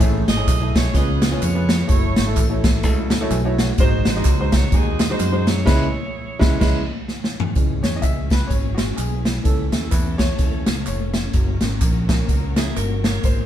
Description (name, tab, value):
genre	uptempo gospel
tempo	127 BPM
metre	4/4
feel	swing 58% on 8ths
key	C# minor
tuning	A4 = 438 Hz
part	warm concert grand piano	accompaniment	0.0-13.5 s	G#2 to G#5	-25 LUFS	right 1 dB	none
part	modern bright fingered electric bass	bass	0.0-13.5 s	E#1 to F#2	-23 LUFS	equal	none
part	swinging big-band drum kit	drums	0.0-13.4 s	crash cymbal, hi-hat, kick drum, snare drum, toms	-19 LUFS	equal	none
part	tambourine and handclaps	percussion	0.0-13.4 s	none	-36 LUFS	right 1 dB	none
part	warm saxophone section	melody	0.3-7.1 s	C#4 to D#5	-29 LUFS	right 2 dB	none
part	warm studio string section	sustained chords	7.5-13.5 s	G#3 to A#4	-34 LUFS	equal	none
part	clean electric guitar	second line	12.6-13.5 s	E4 to C#5	-29 LUFS	equal	none
room	wet studio reverb, RT60 0.7 s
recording	band playing live in one room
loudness	-17 LUFS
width	side -11 dB against mid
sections	0.0-7.6 A section; 7.6-13.5 B section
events	grand piano fill 3.1-3.8, 6.6-7.6; band accent 5.7-7.6; drum fill 7.1-7.6; grand piano solo 7.6-13.5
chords	0.0 Amaj7; 0.9 C#7; 1.9 F#m7; 3.8 G#7; 5.7 C#m7; 7.6 C#m; 9.5 A/C#; 11.3 F#